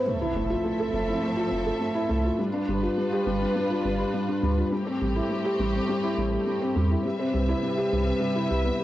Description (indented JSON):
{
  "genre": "piano and strings electronica",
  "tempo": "103 BPM",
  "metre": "4/4",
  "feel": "straight",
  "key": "unclear",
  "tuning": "A4 = 444 Hz",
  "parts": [
    { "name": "felt-muted upright piano", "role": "riff", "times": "0.0-8.8 s", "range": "G3 to A4", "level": "-26 LUFS", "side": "equal", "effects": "cassette tape, analog delay" },
    { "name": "riser and impact", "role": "sound effects", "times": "0.0-2.4 s", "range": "none", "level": "-38 LUFS", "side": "right 1 dB", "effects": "none" },
    { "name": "warm studio string section", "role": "sustained chords", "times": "0.1-8.8 s", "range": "C3 to E5", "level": "-30 LUFS", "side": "equal", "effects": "cassette tape" },
    { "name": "warm sub bass", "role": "bass", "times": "0.3-8.7 s", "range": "F1 to E2", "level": "-28 LUFS", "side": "right 1 dB", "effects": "none" }
  ],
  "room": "moderate spring reverb, RT60 1.6 s, studio reverb",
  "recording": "home recording on cassette",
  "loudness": "-24 LUFS",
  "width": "side -14 dB against mid",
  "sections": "0.1-8.8 A section",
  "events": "drop 0.1-8.8; impact 0.1-2.4",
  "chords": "0.1 Fmaj7; 2.4 G7; 4.7 Am7; 7.0 Cmaj7",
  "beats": "| 0.06 0.64 1.22 1.80 | 2.39 2.97 3.55 4.14 | 4.72 5.30 5.88 6.47 | 7.05 7.63 8.21 8.80"
}